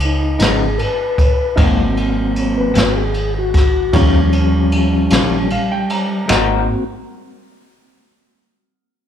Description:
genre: slow blues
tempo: 51 BPM (dotted quarters)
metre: 12/8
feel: straight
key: Ab mixolydian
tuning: A4 = 440 Hz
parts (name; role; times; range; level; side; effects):
- clear upright piano; accompaniment; 0.0-6.7 s; Eb4 to Bb5; -26 LUFS; right 2 dB; slapback echo
- vintage muted fingered electric bass; bass; 0.0-6.7 s; Ab1 to Eb2; -18 LUFS; equal; none
- jazz brush drum kit; drums; 0.0-6.5 s; kick drum, ride cymbal, snare drum; -18 LUFS; equal; none
- mellow tonewheel organ; sustained chords; 0.1-6.8 s; F3 to Cb5; -18 LUFS; left 1 dB; slow rotary speaker
- electric guitar through a small old amp; accompaniment; 0.4-6.6 s; Ab2 to Bb4; -21 LUFS; left 7 dB; harmonic tremolo, slapback echo
room: light reverb, small room ambience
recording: live gig heard through the venue's PA, club reverb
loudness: -13 LUFS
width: side -9 dB against mid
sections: 0.0-6.3 A section; 6.3-9.1 B section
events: tonewheel organ solo 0.0-6.3; upright piano fill 5.1-6.3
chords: 0.0 Db9; 1.6 Ab9; 3.9 Eb9; 6.3 Ab9

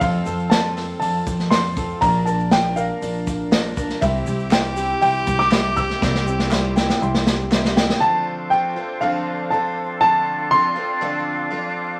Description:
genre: indie folk with a building arrangement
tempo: 120 BPM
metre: 4/4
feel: straight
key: D minor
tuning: A4 = 440 Hz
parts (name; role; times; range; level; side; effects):
- dark upright piano; melody; 0.0-11.7 s; E5 to E6; -23 LUFS; equal; none
- picked twelve-string acoustic guitar; accompaniment; 0.0-12.0 s; F2 to Bb4; -30 LUFS; equal; none
- warm baby grand piano; accompaniment; 0.0-8.0 s; F1 to E5; -35 LUFS; equal; none
- upright bass; bass; 0.0-7.9 s; Bb1 to F2; -27 LUFS; equal; none
- natural country drum kit; drums; 0.0-8.0 s; hi-hat, kick drum, snare drum; -23 LUFS; equal; none
- egg shaker; percussion; 0.0-8.0 s; none; -48 LUFS; equal; none
- warm fiddle; second line; 4.0-7.7 s; G4; -30 LUFS; equal; none
- group handclap; percussion; 4.5-7.6 s; none; -34 LUFS; equal; none
- breathy small flute group; sustained chords; 8.0-12.0 s; D4 to F5; -28 LUFS; equal; none
room: moderate club reverb, RT60 0.8 s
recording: vinyl crackle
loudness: -20 LUFS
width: mono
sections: 0.0-8.0 A section; 8.0-12.0 B section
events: drum fill 6.0-8.0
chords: 0.0 F; 2.0 Bb; 4.0 C; 8.0 Dm7

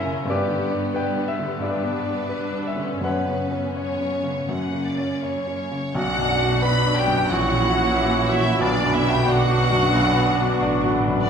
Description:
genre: classical, romantic movement for piano and orchestra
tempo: 80-93 BPM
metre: 4/4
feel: rubato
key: B minor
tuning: A4 = 441 Hz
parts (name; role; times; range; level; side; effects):
- clear baby grand piano; melody; 0.0-11.3 s; A#1 to G5; -24 LUFS; left 1 dB; none
- rich chamber violin section; melody; 0.0-11.3 s; G4 to B5; -28 LUFS; left 3 dB; none
- rich chamber violin section; second line; 0.0-11.3 s; B3 to B5; -30 LUFS; left 2 dB; none
- warm studio viola section; accompaniment; 0.0-11.3 s; F#3 to E4; -29 LUFS; right 2 dB; none
- rich chamber cello section; bass; 0.0-11.3 s; F#2 to B2; -28 LUFS; right 2 dB; none
- mellow clarinet; second line; 5.9-11.3 s; D4 to F#4; -30 LUFS; left 1 dB; none
- warm French horn section; sustained chords; 5.9-11.3 s; B3 to F#4; -30 LUFS; left 3 dB; none
- warm chamber double bass section; bass; 5.9-11.3 s; G1 to B1; -29 LUFS; right 4 dB; none
- warm cor anglais; second line; 6.0-11.3 s; D4 to B4; -29 LUFS; right 3 dB; none
- mellow bassoon; accompaniment; 6.0-11.3 s; B3 to D4; -30 LUFS; right 3 dB; none
- bright trombone section; sustained chords; 6.0-11.3 s; B2 to G3; -31 LUFS; right 3 dB; none
- large flute ensemble; second line; 7.3-11.3 s; B5 to D6; -29 LUFS; right 1 dB; none
room: wet recital hall reverb, RT60 1.6 s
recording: recorded in a church or concert hall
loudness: -19 LUFS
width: side -7 dB against mid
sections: 0.0-6.0 A section; 6.0-11.3 A section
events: none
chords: 0.3 G; 3.0 F#sus4; 4.5 F#; 6.0 Bm; 7.3 F#7/A#; 8.6 Bm

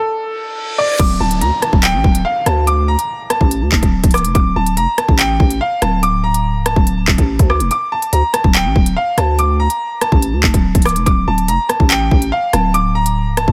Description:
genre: hip hop, drill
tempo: 143 BPM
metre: 4/4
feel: half-time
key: D harmonic minor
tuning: A4 = 442 Hz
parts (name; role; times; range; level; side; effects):
- bright upright piano; melody; 0.0-13.5 s; A4 to D6; -20 LUFS; equal; none
- reverse cymbal and downlifter; sound effects; 0.4-4.4 s; none; -31 LUFS; equal; none
- growling 808-style bass; bass; 1.0-13.5 s; C#1 to D2; -18 LUFS; equal; none
- drill drum kit; drums; 1.0-13.5 s; crash cymbal, handclaps, hi-hat, kick drum, rim click; -17 LUFS; equal; none
room: digital ambience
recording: none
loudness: -15 LUFS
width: mono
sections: 1.0-13.5 A section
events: stop 0.0-1.0; reverse cymbal 0.4-1.0; break 7.7-8.1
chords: 0.0 N.C.; 1.0 D5

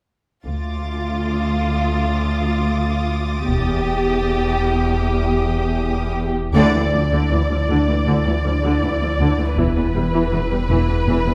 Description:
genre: cinematic, suspense film score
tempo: 80 BPM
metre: 4/4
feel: straight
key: unclear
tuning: A4 = 440 Hz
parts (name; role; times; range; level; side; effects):
- muted symphonic violin section; melody; 0.5-11.3 s; F4 to D5; -26 LUFS; equal; none
- muted symphonic cello section; bass; 0.5-11.3 s; D2 to E2; -26 LUFS; equal; none
- muted symphonic double bass section; bass; 0.5-11.1 s; E1 to D2; -27 LUFS; equal; none
- sub bass with octave; drone; 0.5-11.3 s; E1 to D2; -24 LUFS; equal; none
- muted symphonic violin section; texture; 0.5-6.1 s; D6 to A6; -34 LUFS; equal; none
- muted studio viola section; accompaniment; 6.5-11.3 s; D3 to E4; -25 LUFS; equal; none
- muted studio cello section; riff; 6.5-11.3 s; E2 to D4; -28 LUFS; equal; none
room: wet scoring stage reverb, RT60 2.1 s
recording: recorded in a church or concert hall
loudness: -19 LUFS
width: mono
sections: 0.5-6.5 A section; 6.5-11.3 B section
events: band accent 6.5-7.3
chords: 0.5 Dm; 3.5 Em; 6.5 Dsus2; 9.6 E5

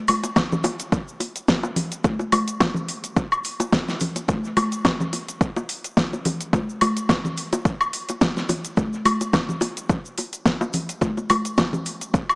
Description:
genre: nu-disco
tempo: 107 BPM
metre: 4/4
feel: swing 55% on 16ths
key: none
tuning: none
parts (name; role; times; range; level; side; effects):
- pop drum kit; drums; 0.1-12.4 s; hi-hat, shaker, snare drum, woodblock; -23 LUFS; equal; overdrive, dub echo
- tube shaker, congas and bongos; percussion; 0.1-12.4 s; none; -25 LUFS; equal; none
- electronic kick drum; drums; 0.4-12.3 s; none; -21 LUFS; equal; overdrive
room: light reverb, digital ambience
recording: echo-heavy mix, small speaker sound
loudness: -20 LUFS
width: side -28 dB against mid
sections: 0.0-12.4 A section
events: none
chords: none

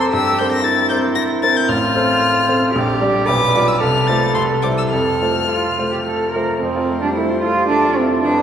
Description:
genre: quick classical-period movement for piano trio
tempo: 104-116 BPM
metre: 3/4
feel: rubato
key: F major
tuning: A4 = 439 Hz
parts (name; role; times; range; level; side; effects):
- dark violin; melody; 0.0-8.4 s; A4 to Bb6; -21 LUFS; left 4 dB; none
- dark cello; second line; 0.0-8.4 s; C4 to B4; -18 LUFS; right 3 dB; none
- warm baby grand piano; accompaniment; 0.0-8.4 s; A1 to D5; -19 LUFS; left 1 dB; none
room: wet cathedral reverb, RT60 4.9 s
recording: recorded in a church or concert hall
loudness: -14 LUFS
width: side -8 dB against mid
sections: 0.0-6.6 A section; 6.6-8.4 A section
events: none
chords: 0.1 C7/G; 1.7 F/A; 2.7 Gm7/Bb; 3.3 G7/B; 3.8 F/C; 4.3 C; 4.9 F

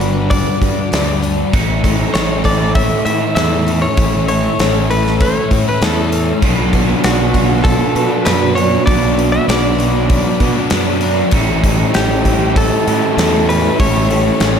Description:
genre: rock, shoegaze and dream pop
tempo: 98 BPM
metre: 4/4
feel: straight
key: unclear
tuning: A4 = 435 Hz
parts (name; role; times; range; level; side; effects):
- direct-recorded clean electric guitar; melody; 0.0-14.6 s; F#4 to E5; -20 LUFS; left 1 dB; analog delay
- string machine, cellos; sustained chords; 0.0-14.6 s; D4 to E6; -23 LUFS; equal; ensemble chorus
- picked twelve-string acoustic guitar; arpeggios; 0.0-14.6 s; E3 to A4; -23 LUFS; right 1 dB; lush chorus, analog delay
- biting overdriven guitar; riff; 0.0-14.6 s; G2 to F#4; -22 LUFS; right 11 dB; reverse reverb
- thick fuzz guitar; riff; 0.0-14.6 s; G2 to B3; -21 LUFS; left 8 dB; distortion, ensemble chorus
- fuzz fingered electric bass; bass; 0.0-14.6 s; G1 to B2; -18 LUFS; equal; overdrive
- gated 80s drum kit; drums; 0.0-14.6 s; hi-hat, kick drum, snare drum; -18 LUFS; equal; none
- overdriven electric guitar; riff; 6.4-14.6 s; A2 to E4; -21 LUFS; left 1 dB; none
room: moderate lush hall reverb, RT60 1.7 s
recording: none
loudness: -12 LUFS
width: side -7 dB against mid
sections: 0.0-14.6 A section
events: none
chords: 0.0 Gmaj7; 1.5 A; 6.4 Bm; 11.3 A7

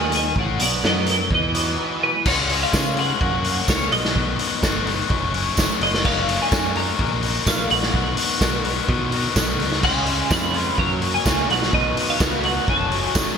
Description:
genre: indie rock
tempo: 127 BPM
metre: 4/4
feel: straight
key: B lydian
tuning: A4 = 437 Hz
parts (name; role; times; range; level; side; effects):
- twelve-string electric guitar; melody; 0.0-13.1 s; A#4 to B5; -24 LUFS; right 1 dB; analog chorus, ping-pong delay
- fuzz guitar; riff; 0.0-13.4 s; A2 to F#4; -24 LUFS; left 6 dB; distortion
- thick fuzz guitar; riff; 0.0-2.1, 9.8-13.4 s; F#2 to F#4; -29 LUFS; right 6 dB; distortion, ensemble chorus, ping-pong delay
- modern bright picked electric bass; bass; 0.0-13.2 s; F#1 to C#3; -27 LUFS; right 1 dB; none
- raw garage drum kit; drums; 0.1-13.3 s; crash cymbal, hi-hat, kick drum, snare drum; -22 LUFS; equal; gated reverb
- tambourine; percussion; 2.7-13.3 s; none; -32 LUFS; right 11 dB; none
room: moderate lush hall reverb, RT60 2.0 s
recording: bright 1980s-style digital production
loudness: -18 LUFS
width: side -6 dB against mid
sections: 0.0-2.3 A section; 2.3-13.4 B section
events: clean electric guitar solo 0.0-2.3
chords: 0.4 Bmaj7; 2.3 C#; 3.2 F#; 3.9 B; 5.1 F#m; 5.8 D#m/F#; 7.9 B; 9.8 C#7; 10.8 F#; 11.5 B; 12.7 F#m6

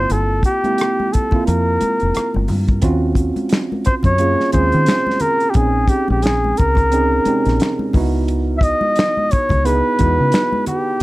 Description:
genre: R&B, neo-soul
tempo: 88 BPM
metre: 4/4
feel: swing 60% on 16ths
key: unclear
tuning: A4 = 436 Hz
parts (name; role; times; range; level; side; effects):
- breathy flugelhorn; melody; 0.0-11.0 s; G4 to E5; -18 LUFS; equal; none
- tine electric piano; accompaniment; 0.0-11.0 s; Bb3 to G#4; -21 LUFS; right 3 dB; none
- deep dub fingered electric bass; bass; 0.0-10.3 s; F1 to D#3; -18 LUFS; equal; none
- warm soul drum kit; drums; 0.1-11.0 s; finger snaps, hi-hat, kick drum, rim click, snare drum; -18 LUFS; equal; none
- congas; percussion; 0.1-11.0 s; none; -28 LUFS; left 3 dB; none
room: moderate small room reverb, RT60 0.6 s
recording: none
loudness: -14 LUFS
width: side -18 dB against mid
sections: 0.0-2.8 A section; 2.8-11.0 B section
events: none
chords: 0.0 Gm7; 2.8 D#m9; 5.6 A#m9; 7.9 C#m9

